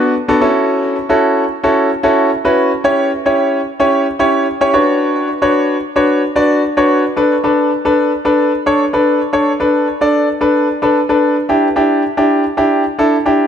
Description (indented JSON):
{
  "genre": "pop",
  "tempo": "111 BPM",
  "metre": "4/4",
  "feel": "straight",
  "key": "B minor",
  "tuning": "A4 = 440 Hz",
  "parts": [
    { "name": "clear concert grand piano", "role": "solo", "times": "0.0-13.5 s", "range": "B3 to D5", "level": "-11 LUFS", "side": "equal", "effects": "digital delay" }
  ],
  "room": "moderate lush hall reverb, RT60 2.4 s",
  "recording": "dark, warm production",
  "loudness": "-11 LUFS",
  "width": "side -8 dB against mid",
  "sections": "0.0-7.2 A section; 7.2-13.5 B section",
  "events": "none",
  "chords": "0.4 F#m7; 2.8 C#dim; 4.7 Bmadd9; 7.2 Bm7; 11.5 Em7"
}